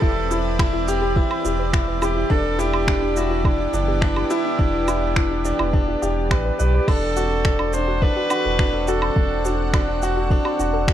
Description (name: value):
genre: piano and strings electronica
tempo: 105 BPM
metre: 4/4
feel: straight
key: E minor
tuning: A4 = 445 Hz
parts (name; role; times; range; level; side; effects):
- warm viola; melody; 0.0-9.7 s; E4 to C5; -26 LUFS; right 2 dB; digital delay
- lush unison pad; sustained chords; 0.0-10.9 s; E3 to F#5; -28 LUFS; right 1 dB; chorus
- soft round pluck; arpeggios; 0.0-10.9 s; D4 to E5; -31 LUFS; left 2 dB; chorus, sidechain pumping, digital delay
- bright concert grand piano; riff; 0.0-10.9 s; D4 to B4; -24 LUFS; left 1 dB; digital delay
- warm sub bass; bass; 0.0-10.9 s; E1 to B1; -24 LUFS; equal; sidechain pumping
- electronic kick drum; drums; 0.0-10.9 s; none; -20 LUFS; equal; small room ambience
- organic electronic drum kit; drums; 0.3-10.9 s; crash cymbal, finger snaps, shaker, woodblock; -27 LUFS; right 2 dB; small room ambience
room: light reverb, digital ambience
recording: dark, warm production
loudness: -18 LUFS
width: side -11 dB against mid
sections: 0.0-10.9 A section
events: none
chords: 0.0 Cmaj7/E; 2.3 Em7; 6.9 D7/E